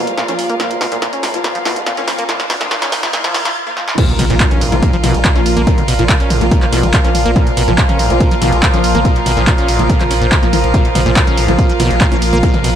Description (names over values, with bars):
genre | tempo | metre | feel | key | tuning
driving peak-time techno | 142 BPM | 4/4 | straight | unclear | A4 = 440 Hz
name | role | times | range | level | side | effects
acid bass, saw | riff | 0.0-12.7 s | Ab2 to Db4 | -20 LUFS | equal | vintage 12-bit sampler grit, sidechain pumping, dub echo
rave stab | stabs | 0.0-12.5 s | F3 to F4 | -21 LUFS | equal | chorus, built-in reverb, sidechain pumping, dub echo
overtone-sweeping drone | drone | 0.0-12.8 s | Bb2 to F3 | -22 LUFS | equal | chorus, built-in reverb, phaser, sidechain pumping
riser and impact | sound effects | 0.1-5.7 s | none | -24 LUFS | equal | none
warm chamber string section | texture | 0.0-12.8 s | F4 to F5 | -21 LUFS | right 1 dB | sidechain pumping
punchy analog drum machine | drums | 0.1-12.7 s | crash cymbal, handclaps, hi-hat, ride cymbal, snare drum, toms | -18 LUFS | equal | high-pass filter on hats, high-pass filter on toms, high-pass filter on snare, high-pass filter on cymbals, high-pass filter on room
electronic kick drum | drums | 4.0-12.5 s | none | -13 LUFS | equal | none
warm sub bass | bass | 4.1-12.7 s | Bb1 | -18 LUFS | equal | tube saturation, sidechain pumping, low-pass filter
room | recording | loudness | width
light reverb, digital ambience | high-pass filter | -11 LUFS | side -9 dB against mid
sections
0.0-4.0 A section; 4.0-12.8 B section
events
build-up 0.0-4.0; drum fill 0.0-3.6, 3.8; filter sweep on acid bass 0.0-4.0; riser 0.1-3.6; break 3.6-4.0; drop 4.0-12.8; impact 4.0-5.7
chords
0.0 Bb5